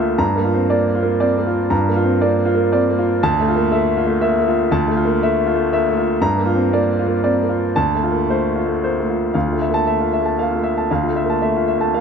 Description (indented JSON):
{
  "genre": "neoclassical minimalist piano",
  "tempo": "118 BPM",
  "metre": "3/4",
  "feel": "rubato",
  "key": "D minor",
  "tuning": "A4 = 440 Hz",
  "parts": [
    { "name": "warm grand piano", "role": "solo", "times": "0.0-12.0 s", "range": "D2 to Bb5", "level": "-15 LUFS", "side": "equal", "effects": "none" }
  ],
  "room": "moderate concert hall reverb, RT60 2.4 s",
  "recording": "none",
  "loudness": "-15 LUFS",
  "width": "side -6 dB against mid",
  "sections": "0.0-9.3 A section; 9.3-12.0 A section",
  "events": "none",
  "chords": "0.2 Gm7; 3.2 Dmadd9; 6.2 Gm7; 7.8 Dm7; 9.3 Dmadd9",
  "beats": "| 0.20 0.70 1.20 | 1.71 2.21 2.71 | 3.21 3.71 4.20 | 4.70 5.20 5.70 | 6.21 6.72 7.24 | 7.76 8.29 8.82 | 9.35 9.87 10.38 | 10.89 11.41 11.92"
}